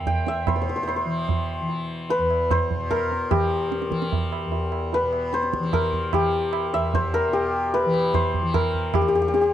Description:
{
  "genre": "indian classical, Hindustani",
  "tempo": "149 BPM",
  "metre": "7/4",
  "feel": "straight",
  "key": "E raga todi",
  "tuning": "A4 = 440 Hz",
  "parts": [
    { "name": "santur", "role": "melody", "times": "0.0-9.5 s", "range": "G4 to G5", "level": "-23 LUFS", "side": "left 2 dB", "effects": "none" },
    { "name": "tanpura", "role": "drone", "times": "0.0-9.5 s", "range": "E2 to E3", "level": "-29 LUFS", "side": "left 1 dB", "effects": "none" },
    { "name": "tabla", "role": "percussion", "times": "0.1-9.5 s", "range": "none", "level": "-27 LUFS", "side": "right 4 dB", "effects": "none" }
  ],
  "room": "little or no reverb",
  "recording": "dry, close 1970s-style studio recording",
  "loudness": "-21 LUFS",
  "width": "side -11 dB against mid",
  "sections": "0.5-9.5 A section",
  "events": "none",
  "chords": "none"
}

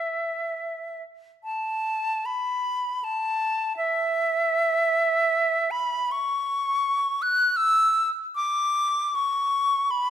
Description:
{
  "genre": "classical, free, expressive piece for unaccompanied flute",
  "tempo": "free time",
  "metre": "none",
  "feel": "none",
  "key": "unclear",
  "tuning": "A4 = 440 Hz",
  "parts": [
    { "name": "bright silver concert flute", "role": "solo", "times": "0.0-10.1 s", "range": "E5 to F#6", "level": "-22 LUFS", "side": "equal", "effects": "none" }
  ],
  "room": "moderate recital hall reverb, RT60 1.8 s",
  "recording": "none",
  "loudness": "-22 LUFS",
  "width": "side -10 dB against mid",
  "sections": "0.0-10.1 A section",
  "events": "none",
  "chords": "none"
}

